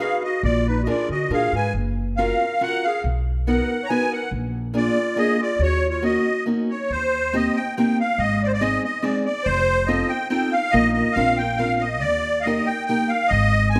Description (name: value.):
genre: musette waltz.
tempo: 140 BPM.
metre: 3/4.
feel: swing 53% on 8ths, rubato.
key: Eb minor, Eb major from 6.9 s.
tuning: A4 = 440 Hz.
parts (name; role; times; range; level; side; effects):
musette accordion; melody; 0.0-13.8 s; Cb5 to A#5; -24 LUFS; equal; none.
breathy clarinet; second line; 0.0-6.4 s; Eb4 to Db5; -30 LUFS; equal; none.
fingerpicked acoustic archtop guitar; accompaniment; 0.0-13.8 s; Ab3 to C5; -26 LUFS; equal; none.
upright bass; bass; 0.4-13.8 s; F1 to D3; -26 LUFS; equal; none.
room: moderate recital hall reverb, RT60 1.6 s.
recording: none.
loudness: -21 LUFS.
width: mono.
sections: 0.0-6.9 A section; 6.9-13.8 B section.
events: none.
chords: 0.4 Bb7; 1.7 Gbmaj7; 3.0 Bmaj7; 4.3 Bb7; 5.6 Ebm7; 6.9 Eb6; 8.2 Ab; 9.5 F7; 10.7 Bbsus4; 11.2 Bbadd9; 12.0 Eb.